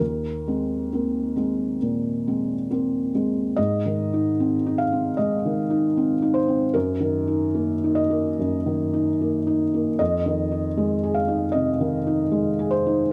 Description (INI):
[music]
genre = neoclassical minimalist piano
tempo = 62-78 BPM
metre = 4/4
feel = rubato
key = unclear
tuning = A4 = 440 Hz
[part]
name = felt-muted upright piano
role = solo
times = 0.0-13.1 s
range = Eb2 to F5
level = -23 LUFS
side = equal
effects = none
[sound]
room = light reverb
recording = none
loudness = -23 LUFS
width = mono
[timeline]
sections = 0.0-3.6 A section; 3.6-13.1 B section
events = none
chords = 0.0 Abadd9/Eb; 3.6 Ab; 6.7 Ebm/Gb; 10.0 Fm7